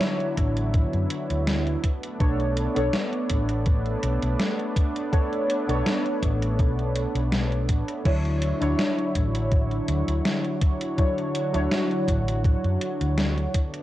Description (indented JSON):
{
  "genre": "vaporwave",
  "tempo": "82 BPM",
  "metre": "4/4",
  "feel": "swing 54% on 16ths",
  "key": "D major",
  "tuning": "A4 = 440 Hz",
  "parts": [
    { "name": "warbly lo-fi synth keys", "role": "accompaniment", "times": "0.0-13.6 s", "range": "F#3 to C#5", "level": "-28 LUFS", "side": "equal", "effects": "wide subtle chorus, tape echo" },
    { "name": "lush unison pad", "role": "sustained chords", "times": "0.0-13.8 s", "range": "D3 to C#5", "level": "-31 LUFS", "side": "equal", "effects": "chorus" },
    { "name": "gated 80s digital drum machine", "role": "drums", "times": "0.0-13.8 s", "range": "crash cymbal, hi-hat, snare drum", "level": "-29 LUFS", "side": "left 1 dB", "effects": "gated reverb, gated reverb snare" },
    { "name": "hollow-body short-scale fingered electric bass", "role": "bass", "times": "0.4-13.5 s", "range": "A1 to F#2", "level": "-26 LUFS", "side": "equal", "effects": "none" },
    { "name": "electronic kick drum", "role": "drums", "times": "0.4-13.7 s", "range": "none", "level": "-22 LUFS", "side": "equal", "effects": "none" }
  ],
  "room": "little or no reverb",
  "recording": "dry, gritty hardware recording, cassette tape",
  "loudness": "-22 LUFS",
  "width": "side -14 dB against mid",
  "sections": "0.0-13.8 A section",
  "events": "none",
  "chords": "0.0 Dmaj9; 1.8 Bm9; 8.1 Dmaj9",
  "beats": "0.01 0.74 1.47 | 2.20 2.94 3.67 4.40 | 5.13 5.86 6.59 7.33 | 8.06 8.79 9.52 10.25 | 10.98 11.72 12.45 13.18"
}